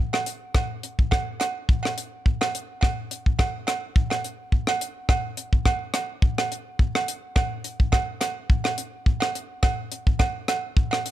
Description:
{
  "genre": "highlife",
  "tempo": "106 BPM",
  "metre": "4/4",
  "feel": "swing 55% on 16ths",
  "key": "none",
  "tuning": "none",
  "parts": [
    { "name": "tight funk drum kit", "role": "drums", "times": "0.1-11.1 s", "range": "hi-hat, kick drum, rim click", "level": "-22 LUFS", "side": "left 1 dB", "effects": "none" },
    { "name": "agogo bells", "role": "percussion", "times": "0.1-11.0 s", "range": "none", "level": "-29 LUFS", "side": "right 6 dB", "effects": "none" }
  ],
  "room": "little or no reverb",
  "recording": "none",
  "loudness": "-22 LUFS",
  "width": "side -13 dB against mid",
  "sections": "0.0-11.1 A section",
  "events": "none",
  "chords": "none"
}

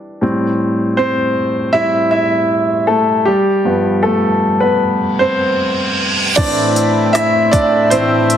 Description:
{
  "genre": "pop ballad",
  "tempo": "78 BPM",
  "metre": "4/4",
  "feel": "straight",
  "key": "A minor",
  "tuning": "A4 = 440 Hz",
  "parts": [
    { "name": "warm baby grand piano", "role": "accompaniment", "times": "0.0-8.4 s", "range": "G2 to E5", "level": "-13 LUFS", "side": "equal", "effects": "none" },
    { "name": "reverse cymbal", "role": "sound effects", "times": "5.2-6.4 s", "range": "none", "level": "-19 LUFS", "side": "right 2 dB", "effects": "none" },
    { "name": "chorused pulse-width pad", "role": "sustained chords", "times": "6.4-8.4 s", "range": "A2 to E5", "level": "-16 LUFS", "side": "left 3 dB", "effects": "none" },
    { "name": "organic electronic drum kit", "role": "drums", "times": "6.4-8.4 s", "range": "crash cymbal, hi-hat, kick drum, snare drum", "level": "-19 LUFS", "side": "equal", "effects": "none" }
  ],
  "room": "moderate recital hall reverb, RT60 1.7 s, digital ambience",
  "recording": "heavily compressed radio sound",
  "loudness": "-12 LUFS",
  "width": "side -9 dB against mid",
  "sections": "0.0-6.4 A section; 6.4-8.4 B section",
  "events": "grand piano solo 0.0-6.4, 6.4-8.4; reverse cymbal 5.2-6.4",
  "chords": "0.2 Am7; 3.3 G7; 6.4 Am"
}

